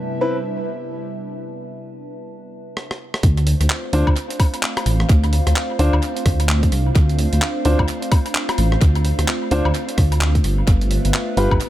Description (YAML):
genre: UK garage, two-step garage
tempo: 129 BPM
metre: 4/4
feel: swing 60% on 16ths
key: D dorian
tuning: A4 = 440 Hz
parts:
  - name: airy breathy pad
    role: sustained chords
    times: 0.0-11.7 s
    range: C3 to F4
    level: -29 LUFS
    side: right 1 dB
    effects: chorus, vintage 12-bit sampler grit, sidechain pumping
  - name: warbly tape-like pad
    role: texture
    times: 0.0-11.7 s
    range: B4 to A5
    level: -31 LUFS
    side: equal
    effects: chorus, built-in reverb, sidechain pumping
  - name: warm baby grand piano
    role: stabs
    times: 0.2-0.4, 3.9-11.5 s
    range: C4 to C5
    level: -23 LUFS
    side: equal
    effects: tape echo
  - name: breakbeat sampler-style drum kit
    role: drums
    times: 2.8-11.7 s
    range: handclaps, hi-hat, rim click, woodblock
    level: -24 LUFS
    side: equal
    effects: tape echo
  - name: dark detuned saw bass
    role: bass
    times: 3.2-11.6 s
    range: G1 to D2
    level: -17 LUFS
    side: equal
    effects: none
  - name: electronic kick drum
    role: drums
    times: 3.2-11.6 s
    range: none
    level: -15 LUFS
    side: equal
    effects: none
room: little or no reverb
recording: echo-heavy mix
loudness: -16 LUFS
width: side -14 dB against mid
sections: 0.0-3.2 A section; 3.2-11.7 B section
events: drum fill 2.8-3.2; drop 3.2-11.7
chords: 0.0 Cmaj7; 3.2 Dm7; 10.4 G7